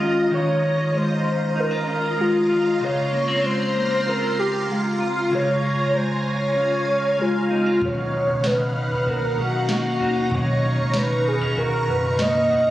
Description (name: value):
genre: dream pop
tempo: 96 BPM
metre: 4/4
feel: straight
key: Db major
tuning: A4 = 440 Hz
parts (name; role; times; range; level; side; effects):
- warm velvety synth lead; melody; 0.0-12.7 s; F4 to Eb5; -22 LUFS; equal; chorus, ping-pong delay
- semi-hollow electric guitar; accompaniment; 0.0-12.7 s; Cb3 to Gb4; -31 LUFS; right 2 dB; tremolo, wide subtle chorus
- phased string machine; sustained chords; 0.0-12.7 s; Eb4 to Db6; -28 LUFS; equal; ensemble chorus, phaser
- clean electric guitar; arpeggios; 0.0-12.7 s; Cb3 to Gb4; -24 LUFS; equal; wide subtle chorus, ping-pong delay
- vintage muted fingered electric bass; bass; 7.8-12.7 s; Gb1 to Db2; -30 LUFS; equal; none
- soft vintage rhythm box; drums; 7.8-12.6 s; kick drum, snare drum, toms; -30 LUFS; equal; none
room: moderate concert hall reverb, RT60 2.0 s, digital ambience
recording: recorded on a phone in the room, studio reverb, compression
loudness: -19 LUFS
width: side -14 dB against mid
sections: 0.0-12.7 A section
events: none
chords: 0.0 Eb9sus4; 2.8 Dbmaj7; 7.8 Cbmaj9